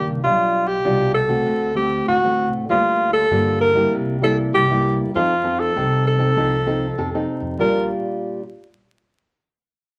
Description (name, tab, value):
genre	samba and choro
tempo	98 BPM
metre	4/4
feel	straight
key	Bb major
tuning	A4 = 438 Hz
part	warm alto saxophone	melody	0.0-7.9 s	F4 to Bb4	-21 LUFS	equal	none
part	nylon-string guitar	accompaniment	0.0-8.4 s	G2 to A4	-25 LUFS	equal	none
part	upright bass	bass	0.1-7.9 s	A1 to G2	-28 LUFS	equal	none
room	moderate club reverb, RT60 0.8 s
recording	vinyl crackle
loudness	-19 LUFS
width	mono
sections	0.0-7.6 A section; 7.6-10.0 B section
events	none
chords	0.2 G7/B; 1.5 D7; 2.7 Gm7/D; 3.9 C7; 5.1 F7; 7.6 Bb6